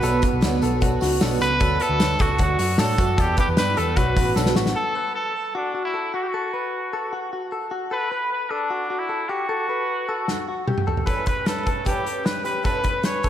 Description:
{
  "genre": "jangly indie pop",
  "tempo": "152 BPM",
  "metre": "4/4",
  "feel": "straight",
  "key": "B minor",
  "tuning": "A4 = 440 Hz",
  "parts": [
    { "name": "clear trumpet", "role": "melody", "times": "0.0-13.3 s", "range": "D4 to C#5", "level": "-25 LUFS", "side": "equal", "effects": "slapback echo" },
    { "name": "picked twelve-string acoustic guitar", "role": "accompaniment", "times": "0.0-4.8, 11.1-13.3 s", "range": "A2 to B4", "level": "-27 LUFS", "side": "right 3 dB", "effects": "slapback echo" },
    { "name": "direct-recorded clean electric guitar", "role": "arpeggios", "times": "0.0-13.3 s", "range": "F#4 to B4", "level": "-27 LUFS", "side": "left 3 dB", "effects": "lush chorus, slapback echo" },
    { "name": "hollow-body short-scale picked electric bass", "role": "bass", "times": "0.0-4.7 s", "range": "A1 to A2", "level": "-25 LUFS", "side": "equal", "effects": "none" },
    { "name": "loose indie drum kit", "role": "drums", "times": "0.0-4.8, 10.3-13.3 s", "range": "hi-hat, kick drum, snare drum, toms", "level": "-23 LUFS", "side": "equal", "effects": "none" },
    { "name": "tambourine", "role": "percussion", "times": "0.0-4.7 s", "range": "none", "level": "-42 LUFS", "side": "right 8 dB", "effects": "none" }
  ],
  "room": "wet lush hall reverb, RT60 1.9 s, small room ambience",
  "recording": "big arena sound",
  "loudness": "-20 LUFS",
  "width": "side -10 dB against mid",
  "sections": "0.0-4.8 A section; 4.8-13.3 B section",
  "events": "drum fill 4.4-4.8, 10.3-11.1",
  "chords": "0.0 Bm; 1.6 D; 3.2 Em7; 4.0 Bm; 4.8 B5; 7.9 Gmaj7; 10.9 A9"
}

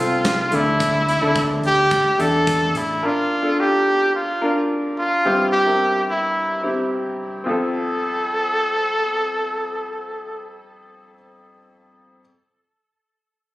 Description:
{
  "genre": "piano-driven pop",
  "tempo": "108 BPM",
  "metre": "4/4",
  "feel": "straight",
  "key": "F major",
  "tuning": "A4 = 438 Hz",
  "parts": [
    { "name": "bright trumpet", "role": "melody", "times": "0.0-10.5 s", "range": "E4 to A4", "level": "-19 LUFS", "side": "equal", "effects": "none" },
    { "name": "bright upright piano", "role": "accompaniment", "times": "0.0-12.2 s", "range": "F2 to Bb4", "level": "-23 LUFS", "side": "left 1 dB", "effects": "none" },
    { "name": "fingered electric bass", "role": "bass", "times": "0.0-3.0 s", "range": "A1 to E2", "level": "-26 LUFS", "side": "equal", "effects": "none" },
    { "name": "huge arena drum kit", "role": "drums", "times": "0.2-2.9 s", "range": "hi-hat, kick drum, snare drum", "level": "-27 LUFS", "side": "equal", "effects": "none" }
  ],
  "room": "moderate large studio reverb, RT60 0.8 s, small room ambience",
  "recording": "recorded on a phone in the room, studio reverb",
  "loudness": "-17 LUFS",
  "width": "side -17 dB against mid",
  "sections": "0.0-7.5 A section; 7.5-9.7 B section",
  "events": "none",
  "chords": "0.0 F; 0.5 Dsus2; 3.0 Bb; 5.2 C; 7.5 F"
}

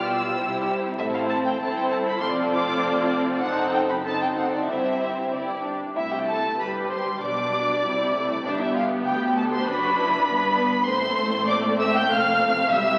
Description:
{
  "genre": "quick classical-period movement for string orchestra",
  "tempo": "98 BPM",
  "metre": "2/4",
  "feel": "straight",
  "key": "C major",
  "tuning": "A4 = 439 Hz",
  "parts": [
    { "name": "warm studio violin section", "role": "second line", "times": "0.0-13.0 s", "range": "D4 to G5", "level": "-28 LUFS", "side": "equal", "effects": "none" },
    { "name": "rich studio viola section", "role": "accompaniment", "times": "0.0-13.0 s", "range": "G3 to G4", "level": "-29 LUFS", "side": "equal", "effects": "none" },
    { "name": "warm chamber cello section", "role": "bass", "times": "0.0-13.0 s", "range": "C2 to C3", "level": "-36 LUFS", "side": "equal", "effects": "none" },
    { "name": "warm symphonic double bass section", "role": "bass", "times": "0.0-13.0 s", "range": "F1 to D2", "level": "-42 LUFS", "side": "equal", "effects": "none" },
    { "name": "dark chamber violin section", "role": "melody", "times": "0.1-13.0 s", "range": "D5 to G6", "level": "-28 LUFS", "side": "equal", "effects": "none" }
  ],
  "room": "wet concert hall reverb, RT60 2.0 s",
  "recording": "very old 78 rpm record, vinyl crackle, nothing above 11.0 kHz",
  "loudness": "-24 LUFS",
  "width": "mono",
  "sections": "0.0-6.0 A section; 6.0-13.0 B section",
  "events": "none",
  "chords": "0.4 C; 1.0 Am; 2.2 Dm7/F; 3.4 F#dim7; 4.7 C/G; 5.3 G5; 6.0 C; 7.2 G/B; 7.8 C; 8.5 G; 9.7 D/F#; 10.3 G; 10.9 Am; 12.1 F"
}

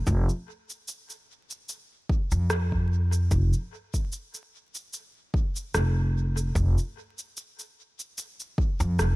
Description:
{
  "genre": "ambient dub",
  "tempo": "74 BPM",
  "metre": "4/4",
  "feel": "swing 55% on 16ths",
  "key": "unclear",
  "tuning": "A4 = 440 Hz",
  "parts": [
    { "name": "upright bass", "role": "bass", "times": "0.0-9.2 s", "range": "F1 to F2", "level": "-23 LUFS", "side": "equal", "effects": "none" },
    { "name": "electronic kick drum", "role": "drums", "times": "0.1-8.8 s", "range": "none", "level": "-27 LUFS", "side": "equal", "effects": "none" },
    { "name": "electronic shaker and rim click", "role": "drums", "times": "0.1-9.2 s", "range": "none", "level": "-33 LUFS", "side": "equal", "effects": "dub echo" }
  ],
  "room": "little or no reverb",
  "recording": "vinyl crackle",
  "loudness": "-24 LUFS",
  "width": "side -21 dB against mid",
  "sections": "0.0-9.2 A section",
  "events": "none",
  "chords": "none"
}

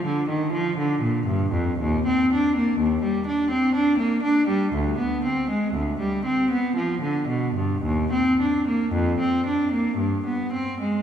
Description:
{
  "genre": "classical, baroque-style suite movement for unaccompanied cello",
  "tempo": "52-63 BPM",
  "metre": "3/4",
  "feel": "rubato",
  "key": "C minor",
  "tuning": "A4 = 439 Hz",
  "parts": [
    { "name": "rich cello", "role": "solo", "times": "0.0-11.0 s", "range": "D2 to D4", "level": "-21 LUFS", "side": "equal", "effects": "none" }
  ],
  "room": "wet concert hall reverb, RT60 2.4 s",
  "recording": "heard from further back in the room",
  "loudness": "-21 LUFS",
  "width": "side -9 dB against mid",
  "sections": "0.0-11.0 A section",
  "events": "none",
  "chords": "none"
}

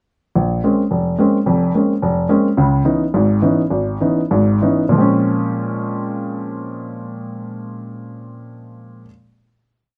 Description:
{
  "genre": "jazz",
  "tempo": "184-216 BPM",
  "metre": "4/4",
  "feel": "swing 60% on 8ths",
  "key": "Bb minor",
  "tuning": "A4 = 440 Hz",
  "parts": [
    { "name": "warm baby grand piano", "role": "solo", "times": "0.4-9.1 s", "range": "F1 to Eb4", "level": "-18 LUFS", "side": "equal", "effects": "none" }
  ],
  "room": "moderate studio reverb, RT60 0.6 s",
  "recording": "close, detailed microphones",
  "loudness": "-17 LUFS",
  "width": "mono",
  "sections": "0.3-4.9 A section; 4.9-7.5 final chord",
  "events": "slowing down 2.6-4.9",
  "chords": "0.3 Bbm9; 2.6 Dbm9; 4.9 Bbm9"
}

